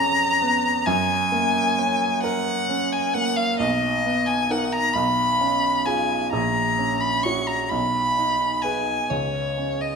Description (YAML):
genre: classical, romantic duo for violin and grand piano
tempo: 44 BPM (dotted quarters)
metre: 6/8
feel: rubato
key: F# major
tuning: A4 = 440 Hz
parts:
  - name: rich violin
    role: melody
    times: 0.0-10.0 s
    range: C#5 to C#6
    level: -21 LUFS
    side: left 2 dB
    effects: none
  - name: clear baby grand piano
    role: accompaniment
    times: 0.0-10.0 s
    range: A#1 to C#5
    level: -24 LUFS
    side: right 4 dB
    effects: none
room: wet recital hall reverb, RT60 1.7 s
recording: minimal, uncompressed stereo recording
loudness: -20 LUFS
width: side -5 dB against mid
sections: 0.0-10.0 A section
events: none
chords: 0.0 C#7/E#; 0.9 F#; 3.6 Bmaj7; 4.9 C#7/B; 6.3 F#/A#; 7.7 G#m/B; 9.1 N.C.